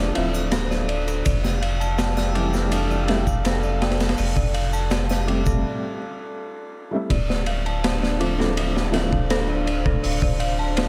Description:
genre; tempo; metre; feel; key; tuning
trip hop; 82 BPM; 4/4; straight; D minor; A4 = 440 Hz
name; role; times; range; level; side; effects
felt-muted upright piano; accompaniment; 0.0-9.1 s; E3 to G4; -30 LUFS; equal; tremolo, tape echo
dark analog pad; sustained chords; 0.0-10.9 s; D4 to E6; -34 LUFS; equal; chorus
dark detuned synth bell; arpeggios; 0.0-10.9 s; D4 to D6; -31 LUFS; equal; chorus, tape echo
soft dub sub bass; bass; 0.0-10.9 s; D1 to F1; -27 LUFS; equal; none
crunchy breakbeat drum kit; drums; 0.2-10.9 s; hi-hat, kick drum, ride cymbal, snare drum; -27 LUFS; equal; none
tube shaker and triangle; percussion; 0.3-5.6 s; none; -42 LUFS; equal; none
room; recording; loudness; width
studio ambience; none; -22 LUFS; mono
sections
0.0-7.1 A section; 7.1-10.9 B section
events
break 5.6-7.1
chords
0.0 Dm7; 1.3 Fmaj9; 7.1 Dm7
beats
0.52 | 1.25 1.99 2.72 3.45 | 4.18 4.91 5.65 6.38 | 7.11 7.84 8.57 9.30 | 10.04 10.77

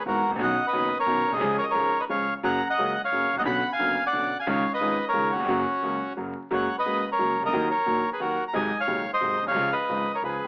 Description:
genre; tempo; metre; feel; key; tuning
tango; 177 BPM; 3/4; rubato; F# major; A4 = 440 Hz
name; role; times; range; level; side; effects
bandoneon; melody; 0.0-10.5 s; C#4 to B5; -24 LUFS; equal; plate reverb
clear concert grand piano; accompaniment; 0.1-10.5 s; D#1 to G#4; -28 LUFS; equal; none
upright bass; bass; 0.1-10.4 s; F#1 to D#2; -40 LUFS; equal; none
room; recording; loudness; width
moderate studio reverb, RT60 0.9 s; vinyl crackle, AM radio sound; -22 LUFS; side -33 dB against mid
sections
0.0-6.5 A section; 6.5-10.5 B section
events
none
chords
0.4 Badd9; 1.4 C#; 2.4 F#add9; 3.5 Bmadd9; 4.5 C#add9; 5.5 F#; 6.5 F#add9; 7.5 D#m; 8.5 G#7; 9.6 C#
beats
0.07 | 0.41 0.74 1.08 | 1.42 1.76 2.10 | 2.44 2.78 3.12 | 3.46 3.80 4.14 | 4.48 4.81 5.15 | 5.49 5.82 6.17 | 6.51 6.85 7.19 | 7.53 7.87 8.21 | 8.54 8.88 9.21 | 9.55 9.89 10.23

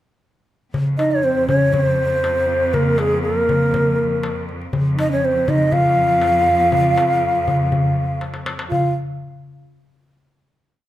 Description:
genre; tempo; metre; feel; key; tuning
Arabic maqam ensemble; 120 BPM; 4/4; straight; F maqam bayati; A4 = 438 Hz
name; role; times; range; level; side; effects
rich symphonic cello section; drone; 0.7-8.8 s; F2; -26 LUFS; equal; none
darbuka; percussion; 0.7-8.9 s; none; -21 LUFS; left 1 dB; none
breathy mellow ney; melody; 1.0-8.9 s; Ab4 to F5; -18 LUFS; equal; none
mellow French horn; second line; 1.0-8.9 s; Ab3 to F4; -24 LUFS; right 3 dB; none
room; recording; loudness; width
moderate recital hall reverb, RT60 1.3 s; none; -16 LUFS; side -14 dB against mid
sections
0.7-8.7 A section; 8.7-10.7 final note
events
drum fill 8.2-8.7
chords
none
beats
| 0.74 1.24 1.74 2.24 | 2.73 3.23 3.73 4.23 | 4.73 5.23 5.72 6.22 | 6.72 7.22 7.71 8.21 | 8.71

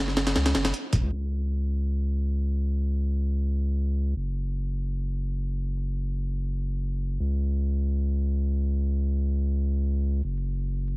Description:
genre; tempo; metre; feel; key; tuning
drum and bass, jungle; free time; none; none; unclear; A4 = 440 Hz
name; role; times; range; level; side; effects
saturated sub bass; bass; 0.0-11.0 s; E1 to C#2; -25 LUFS; equal; none
breakbeat sampler-style drum kit; drums; 0.1-1.0 s; hi-hat, kick drum, snare drum; -24 LUFS; equal; studio ambience
room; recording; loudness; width
digital ambience; heavily compressed radio sound, vinyl crackle, low-pass filter; -25 LUFS; side -26 dB against mid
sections
0.0-1.1 A section; 1.1-11.0 B section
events
drop 0.0-1.1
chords
none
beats
free time

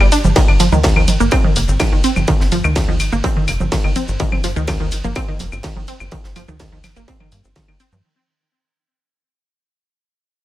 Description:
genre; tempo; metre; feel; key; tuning
melodic techno; 125 BPM; 4/4; straight; unclear; A4 = 440 Hz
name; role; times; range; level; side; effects
wide unison pluck; arpeggios; 0.0-7.9 s; Eb3 to D4; -20 LUFS; right 1 dB; phaser, sidechain pumping, digital delay
tight sequencer bass; bass; 0.0-8.0 s; F1 to G2; -19 LUFS; equal; sidechain pumping
techno drum kit; drums; 0.0-8.0 s; claves, congas, hi-hat, ride cymbal, shaker; -22 LUFS; right 2 dB; none
modern studio drum kit; drums; 0.1-7.9 s; hi-hat, snare drum; -31 LUFS; right 2 dB; sidechain pumping on hats, high-pass filter on hats, high-pass filter on snare, high-pass filter on room
electronic kick drum; drums; 0.4-7.7 s; none; -17 LUFS; equal; distortion
room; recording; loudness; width
little or no reverb; none; -13 LUFS; side -14 dB against mid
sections
0.0-8.0 A section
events
drop 0.0-8.0; fade-out 0.4-8.0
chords
0.4 Eb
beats
| 0.36 0.84 1.32 1.80 | 2.28 2.76 3.24 3.72 | 4.20 4.68 5.16 5.64 | 6.12 6.60 7.08 7.56

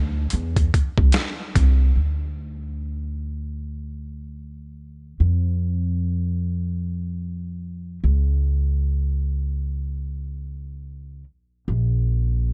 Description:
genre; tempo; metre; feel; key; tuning
R&B, neo-soul; 74 BPM; 4/4; swing 61% on 16ths; unclear; A4 = 441 Hz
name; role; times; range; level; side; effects
upright bass; bass; 0.0-12.5 s; Bb1 to F2; -24 LUFS; equal; none
boom bap sampler-style drum kit; drums; 0.3-1.8 s; hi-hat, kick drum, snare drum; -23 LUFS; equal; none
room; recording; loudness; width
little or no reverb; nothing above 10.9 kHz; -23 LUFS; mono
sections
0.0-1.9 A section; 1.9-12.5 B section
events
none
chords
none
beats
0.32 1.13 | 1.94 2.75 3.56 4.37 | 5.18 5.99 6.80 7.61 | 8.42 9.23 10.04 10.86 | 11.67 12.48

